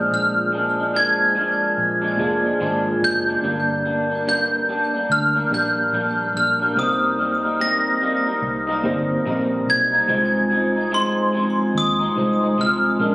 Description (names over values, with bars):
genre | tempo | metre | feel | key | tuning
indie pop, bedroom pop | 72 BPM | 4/4 | swing 60% on 16ths | unclear | A4 = 440 Hz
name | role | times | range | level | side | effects
glockenspiel with brass mallets | melody | 0.0-13.1 s | C6 to Bb6 | -20 LUFS | equal | analog chorus, digital delay
electric guitar through a small old amp | accompaniment | 0.0-13.1 s | G2 to Eb4 | -24 LUFS | left 1 dB | wide subtle chorus, warbly pitch drift
mellow tine electric piano | accompaniment | 0.0-13.1 s | Ab3 to D5 | -24 LUFS | right 1 dB | medium stereo tremolo
vintage muted fingered electric bass | bass | 0.0-13.1 s | F1 to Eb2 | -30 LUFS | equal | none
room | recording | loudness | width
moderate small room reverb, RT60 0.5 s | recorded on a phone in the room, studio reverb | -17 LUFS | side -21 dB against mid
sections
0.0-13.1 A section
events
none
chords
0.0 Bb7; 3.4 Gm; 6.8 Cm7; 10.1 Fm7/C